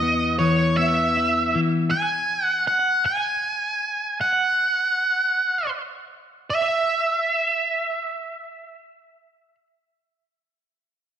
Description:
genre	rock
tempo	52 BPM (dotted quarters)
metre	6/8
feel	straight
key	E major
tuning	A4 = 440 Hz
part	octave-fuzz lead guitar	melody	0.0-9.6 s	C#5 to G#5	-21 LUFS	right 2 dB	distortion, slapback echo
part	clean electric guitar	arpeggios	0.0-1.9 s	E2 to E4	-22 LUFS	left 3 dB	slapback echo
room	moderate concert hall reverb, RT60 2.1 s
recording	none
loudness	-20 LUFS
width	side -9 dB against mid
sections	0.0-6.5 A section; 6.5-8.8 B section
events	none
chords	0.0 E5; 1.9 N.C.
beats	0.78 | 1.93 3.07 | 4.22 5.36 | 6.50 7.65

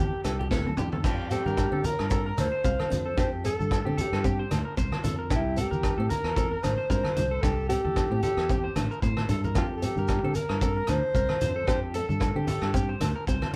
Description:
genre	highlife guitar band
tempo	113 BPM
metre	4/4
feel	swing 55% on 16ths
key	F major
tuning	A4 = 439 Hz
part	mellow alto saxophone	melody	0.0-13.0 s	E4 to C5	-32 LUFS	equal	none
part	fingerpicked steel-string acoustic guitar	accompaniment	0.0-13.6 s	C4 to D4	-38 LUFS	equal	none
part	electric guitar at the edge of break-up	arpeggios	0.0-13.5 s	G4 to F5	-38 LUFS	equal	spring reverb
part	fingered electric bass	bass	0.0-13.4 s	A1 to D3	-33 LUFS	equal	none
part	vintage drum kit	drums	0.2-13.6 s	crash cymbal, hi-hat, kick drum, rim click, snare drum, toms	-33 LUFS	equal	none
part	shekere	percussion	0.2-13.4 s	none	-40 LUFS	equal	none
part	agogo bells	percussion	0.3-13.5 s	none	-43 LUFS	equal	none
part	congas	percussion	0.4-13.6 s	none	-36 LUFS	equal	none
room	moderate small room reverb, RT60 0.5 s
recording	band playing live in one room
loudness	-27 LUFS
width	mono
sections	0.0-1.0 A section; 1.0-13.6 B section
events	drum fill 0.5-1.0, 9.2-9.6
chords	0.0 C; 1.0 Fsus2; 5.3 C; 9.6 Fsus2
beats	0.51 | 1.04 1.57 2.11 2.64 | 3.17 3.71 4.24 4.77 | 5.30 5.84 6.37 6.90 | 7.43 7.96 8.50 9.03 | 9.56 10.09 10.62 11.15 | 11.69 12.22 12.75 13.28

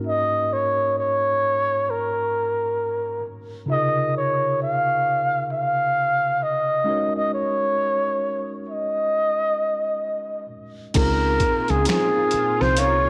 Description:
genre	R&B, neo-soul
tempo	66 BPM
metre	4/4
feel	swing 61% on 16ths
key	Db major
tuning	A4 = 440 Hz
part	tine electric piano	accompaniment	0.0-13.1 s	Ab2 to Db5	-32 LUFS	equal	none
part	breathy flugelhorn	melody	0.1-13.1 s	Ab4 to F5	-23 LUFS	equal	none
part	boom bap sampler-style drum kit	drums	10.9-13.0 s	crash cymbal, finger snaps, hi-hat, kick drum, snare drum	-28 LUFS	equal	overdrive
part	lush unison pad	sustained chords	11.0-13.1 s	Bb2 to F4	-35 LUFS	equal	chorus, phaser
part	woody fretless electric bass	bass	11.0-13.1 s	C2 to Db2	-25 LUFS	equal	transformer saturation, analog chorus
part	electric guitar through a small old amp	second line	12.8-12.9 s	Db4 to Bb4	-32 LUFS	equal	wah, subtle chorus
room	moderate echo chamber reverb, RT60 2.0 s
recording	none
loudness	-22 LUFS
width	mono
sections	0.0-11.0 A section; 11.0-13.1 B section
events	none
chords	0.0 Ab9sus4; 3.7 Db6; 6.9 Ab9sus4; 11.0 Db6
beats	| 0.05 0.96 1.86 2.77 | 3.68 4.59 5.50 6.41 | 7.32 8.23 9.14 10.05 | 10.96 11.87 12.77

